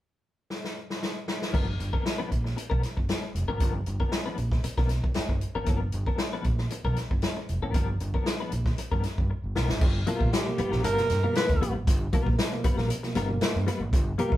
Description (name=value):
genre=funk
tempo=116 BPM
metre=4/4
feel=straight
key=G mixolydian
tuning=A4 = 439 Hz
part: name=swinging big-band drum kit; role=drums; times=0.5-14.4 s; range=crash cymbal, hi-hat, kick drum, snare drum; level=-28 LUFS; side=equal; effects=none
part: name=semi-hollow electric guitar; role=accompaniment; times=1.5-14.4 s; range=F3 to B4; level=-33 LUFS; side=left 4 dB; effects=tremolo
part: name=overdriven fingered electric bass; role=bass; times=1.5-14.4 s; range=F1 to G2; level=-29 LUFS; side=right 1 dB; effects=none
part: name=tine electric piano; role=stabs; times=9.8-14.4 s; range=G2 to A#3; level=-33 LUFS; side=right 1 dB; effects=medium stereo tremolo
part: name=breathy alto saxophone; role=melody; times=10.1-14.3 s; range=F4 to B4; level=-28 LUFS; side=right 2 dB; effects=none
room=moderate studio reverb, RT60 0.6 s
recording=band playing live in one room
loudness=-25 LUFS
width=side -14 dB against mid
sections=0.0-1.5 A section; 1.5-9.8 B section; 9.8-14.4 C section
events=drum fill 0.5-1.5, 9.3-9.8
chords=0.0 N.C.; 1.5 G7#9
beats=0.51 1.02 | 1.54 2.05 2.57 3.09 | 3.60 4.12 4.64 5.16 | 5.67 6.19 6.71 7.23 | 7.74 8.26 8.78 9.29 | 9.81 10.33 10.84 11.36 | 11.87 12.39 12.90 13.42 | 13.93